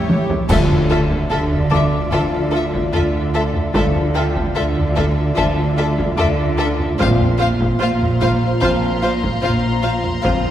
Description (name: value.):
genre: cinematic, suspense film score.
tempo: 74 BPM.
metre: 4/4.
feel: straight.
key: D minor.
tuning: A4 = 440 Hz.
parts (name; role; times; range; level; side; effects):
warm chamber violin section; melody; 0.0-10.3 s; C#5 to F5; -26 LUFS; left 4 dB; none.
warm studio violin section; second line; 0.0-10.3 s; G4 to C5; -25 LUFS; left 1 dB; none.
warm studio viola section; accompaniment; 0.0-10.3 s; E4 to F4; -27 LUFS; right 2 dB; none.
ethereal airy pad; sustained chords; 0.0-10.5 s; F4 to F5; -25 LUFS; left 1 dB; ensemble chorus, built-in reverb.
mellow French horn section; sustained chords; 0.0-10.5 s; F3 to F4; -27 LUFS; left 3 dB; none.
dark studio double bass section; bass; 0.0-10.5 s; A1 to D2; -22 LUFS; right 2 dB; none.
warm studio cello section; bass; 0.0-10.5 s; A2 to D3; -21 LUFS; right 1 dB; none.
clear studio violin section; texture; 0.0-0.1, 7.0-10.5 s; Bb5 to C6; -28 LUFS; left 3 dB; none.
taiko ensemble; drums; 0.1-10.5 s; none; -22 LUFS; equal; none.
clash cymbals and concert bass drum; percussion; 0.5-2.1 s; none; -25 LUFS; equal; none.
concert harp; texture; 1.7-8.6 s; G5 to G6; -30 LUFS; left 5 dB; none.
room: wet concert hall reverb, RT60 1.8 s.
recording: none.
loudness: -15 LUFS.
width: side -11 dB against mid.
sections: 0.5-10.5 A section.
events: drum fill 0.0-0.5; band accent 0.5-1.3.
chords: 0.5 Dmadd9; 7.0 Bbsus2.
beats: | 0.50 1.31 2.12 2.93 | 3.74 4.55 5.36 6.17 | 6.99 7.80 8.61 9.42 | 10.23.